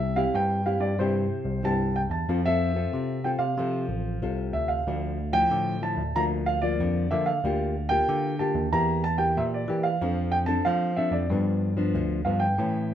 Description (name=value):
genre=samba and choro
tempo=93 BPM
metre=4/4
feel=straight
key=F major, D minor from 4.9 s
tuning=A4 = 442 Hz
part: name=warm concert grand piano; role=melody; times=0.0-12.9 s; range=C5 to Bb5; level=-27 LUFS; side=right 2 dB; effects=none
part: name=nylon-string guitar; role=accompaniment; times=0.0-12.9 s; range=G2 to A4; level=-29 LUFS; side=left 3 dB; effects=none
part: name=barky tine electric piano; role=bass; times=0.0-12.9 s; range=A1 to F3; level=-28 LUFS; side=equal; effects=none
room=moderate studio reverb, RT60 0.7 s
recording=minimal, uncompressed stereo recording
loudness=-23 LUFS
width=side -10 dB against mid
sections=0.0-4.9 A section; 4.9-12.9 B section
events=none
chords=0.0 C; 2.3 F; 4.9 Dmadd9; 6.2 Bb/D; 7.4 Gm7/D; 8.7 Edim; 10.0 Dm7/F; 11.3 G7